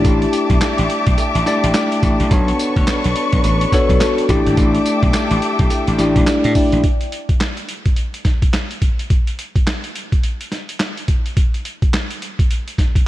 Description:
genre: R&B, new jack swing.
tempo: 106 BPM.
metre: 4/4.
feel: swing 60% on 16ths.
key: unclear.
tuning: A4 = 440 Hz.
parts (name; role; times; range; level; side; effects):
bell-like tine electric piano; accompaniment; 0.0-6.9 s; A3 to D5; -18 LUFS; left 1 dB; phaser.
muted studio string section; sustained chords; 0.0-6.8 s; D4 to D6; -22 LUFS; left 2 dB; none.
boom bap sampler-style drum kit; drums; 0.0-13.1 s; handclaps, hi-hat, kick drum, snare drum, tambourine; -17 LUFS; equal; none.
cowbell; percussion; 0.0-6.4 s; none; -35 LUFS; right 11 dB; none.
slap bass; bass; 0.1-6.8 s; G#1 to A2; -18 LUFS; equal; none.
room: light reverb.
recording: dark, warm production.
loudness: -14 LUFS.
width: side -15 dB against mid.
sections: 0.0-6.8 A section; 6.8-13.1 B section.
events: none.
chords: 0.0 A7sus4; 2.3 Bm9; 4.3 A7sus4; 6.8 N.C..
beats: | 0.05 0.61 1.18 1.74 | 2.31 2.88 3.44 4.01 | 4.57 5.14 5.71 6.27 | 6.84 7.40 7.97 8.54 | 9.10 9.67 10.23 10.80 | 11.37 11.93 12.50.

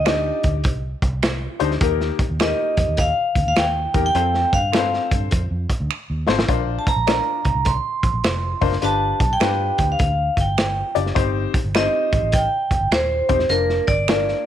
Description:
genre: uptempo 1960s-style soul.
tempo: 103 BPM.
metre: 4/4.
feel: swing 65% on 8ths.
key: Bb major.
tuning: A4 = 440 Hz.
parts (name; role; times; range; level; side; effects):
vibraphone with hard mallets; melody; 0.0-14.5 s; Bb4 to C6; -21 LUFS; right 2 dB; none.
vintage muted fingered electric bass; bass; 0.0-14.3 s; Eb1 to G2; -24 LUFS; right 1 dB; none.
clear upright piano; accompaniment; 0.1-14.5 s; Bb3 to D5; -24 LUFS; left 13 dB; none.
crunchy breakbeat drum kit; drums; 0.1-14.4 s; hi-hat, kick drum, snare drum; -22 LUFS; right 1 dB; none.
finger snap; percussion; 0.1-14.3 s; none; -29 LUFS; right 12 dB; none.
room: light reverb, small room ambience.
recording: 1960s-style stereo with parts hard left and right.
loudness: -17 LUFS.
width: side -10 dB against mid.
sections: 0.0-14.5 A section.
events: drum fill 5.9-6.5.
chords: 0.0 Cmadd9; 1.8 Eb; 4.1 F; 6.5 Bbadd9; 8.8 G7; 11.2 Cm/G; 13.5 Bb/F.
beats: 0.06 0.65 1.23 | 1.81 2.40 2.98 3.56 | 4.15 4.73 5.32 5.90 | 6.49 7.07 7.66 8.24 | 8.82 9.41 9.99 10.58 | 11.16 11.75 12.33 12.92 | 13.50 14.09.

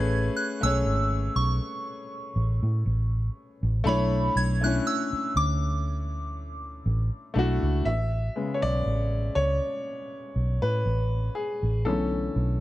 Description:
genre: contemporary R&B.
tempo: 60 BPM.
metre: 4/4.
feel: swing 54% on 16ths.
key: unclear.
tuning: A4 = 440 Hz.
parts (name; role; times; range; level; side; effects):
soft synth bell; melody; 0.0-7.3 s; B5 to G#6; -30 LUFS; right 1 dB; chorus, phaser.
warm grand piano; accompaniment; 0.0-12.6 s; C#3 to E5; -29 LUFS; left 2 dB; none.
vintage muted fingered electric bass; bass; 0.0-12.6 s; G#1 to A2; -25 LUFS; equal; none.
room: small room ambience.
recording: none.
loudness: -24 LUFS.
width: side -16 dB against mid.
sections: 0.0-7.9 A section; 7.9-12.6 B section.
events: grand piano solo 7.9-12.6.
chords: 0.0 Amaj9; 3.9 Bm11; 7.9 Amaj9; 11.9 Bm11.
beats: 0.86 1.86 2.86 | 3.86 4.86 5.86 6.86 | 7.86 8.86 9.86 10.86 | 11.86.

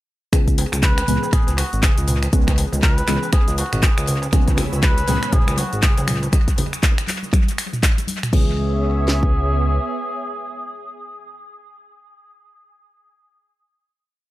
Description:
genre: afro house.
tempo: 120 BPM.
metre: 4/4.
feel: swing 60% on 16ths.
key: C# minor.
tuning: A4 = 440 Hz.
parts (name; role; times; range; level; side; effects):
deep mellow chord stab; stabs; 0.3-11.4 s; E3 to G#4; -28 LUFS; equal; chorus, phaser, sidechain pumping, tape echo.
smooth synth bass; bass; 0.3-9.8 s; G#1 to C#2; -21 LUFS; equal; sidechain pumping.
afro-pop drum kit; drums; 0.3-8.4 s; crash cymbal, finger snaps, handclaps, hi-hat, shaker, toms; -24 LUFS; equal; tape echo.
house drum kit; drums; 0.3-9.3 s; kick drum, snare drum; -17 LUFS; equal; none.
darbuka; percussion; 0.3-6.3 s; none; -31 LUFS; right 2 dB; tape echo.
trumpet with cup mute; melody; 0.8-11.4 s; F#4 to B4; -28 LUFS; equal; dub echo.
warm analog pad; sustained chords; 4.3-11.4 s; B3 to E6; -30 LUFS; right 1 dB; chorus, sidechain pumping.
congas; percussion; 4.3-8.2 s; none; -28 LUFS; equal; tape echo.
room: little or no reverb.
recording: echo-heavy mix.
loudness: -16 LUFS.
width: side -16 dB against mid.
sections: 0.3-8.3 drop; 8.3-12.3 final chord.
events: drop 0.3-8.3.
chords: 0.3 C#m7.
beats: | 0.33 0.83 1.33 1.83 | 2.33 2.83 3.33 3.83 | 4.33 4.83 5.33 5.83 | 6.33 6.83 7.33 7.83 | 8.33 8.83 9.33 9.83 | 10.33 10.83 11.33.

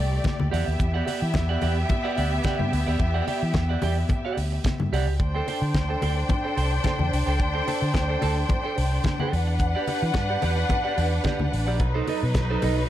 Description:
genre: disco.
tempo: 109 BPM.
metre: 4/4.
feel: straight.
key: E minor.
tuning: A4 = 440 Hz.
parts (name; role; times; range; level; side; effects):
clear studio string section; second line; 0.0-12.9 s; F#3 to G5; -28 LUFS; left 1 dB; none.
fingered electric bass; bass; 0.0-12.8 s; A1 to E3; -25 LUFS; equal; none.
clean electric guitar; accompaniment; 0.1-12.8 s; D#4 to A5; -31 LUFS; right 6 dB; none.
damped 70s drum kit; drums; 0.2-12.8 s; hi-hat, kick drum, snare drum; -29 LUFS; equal; none.
congas; percussion; 0.2-12.8 s; none; -32 LUFS; left 3 dB; none.
room: light reverb.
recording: dark, warm production.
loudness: -22 LUFS.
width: side -12 dB against mid.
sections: 0.0-12.9 A section.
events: none.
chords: 0.0 D7sus4; 0.5 Em9; 5.2 D7sus4; 9.3 Em9; 11.8 B7b9.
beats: 0.26 | 0.80 1.35 1.90 2.45 | 3.00 3.55 4.10 4.65 | 5.20 5.75 6.30 6.85 | 7.40 7.95 8.50 9.05 | 9.60 10.15 10.70 11.25 | 11.80 12.35.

